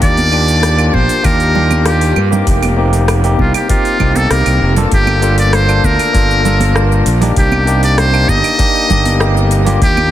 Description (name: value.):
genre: sunset chillout.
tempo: 98 BPM.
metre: 4/4.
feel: straight.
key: G minor.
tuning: A4 = 441 Hz.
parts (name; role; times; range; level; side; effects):
trumpet with metal mute; melody; 0.0-10.1 s; F4 to Eb5; -16 LUFS; equal; vintage 12-bit sampler grit, tape echo.
barky tine electric piano; accompaniment; 0.0-10.1 s; Bb3 to A5; -17 LUFS; equal; auto-pan, digital delay.
fuzz fingered electric bass; bass; 0.0-10.1 s; F1 to G2; -13 LUFS; equal; overdrive.
deep house drum kit; drums; 0.0-10.1 s; claves, hi-hat, rim click, shaker; -22 LUFS; right 1 dB; overdrive.
electronic kick drum; drums; 0.0-9.9 s; none; -16 LUFS; equal; overdrive.
congas; percussion; 0.2-10.1 s; none; -22 LUFS; right 5 dB; none.
room: light reverb.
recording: dense, heavily limited modern master.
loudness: -9 LUFS.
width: side -12 dB against mid.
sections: 0.0-4.9 A section; 4.9-10.1 B section.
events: none.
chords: 0.0 Ebmaj7; 2.5 F7sus4; 4.9 Gm7; 7.4 Cm7.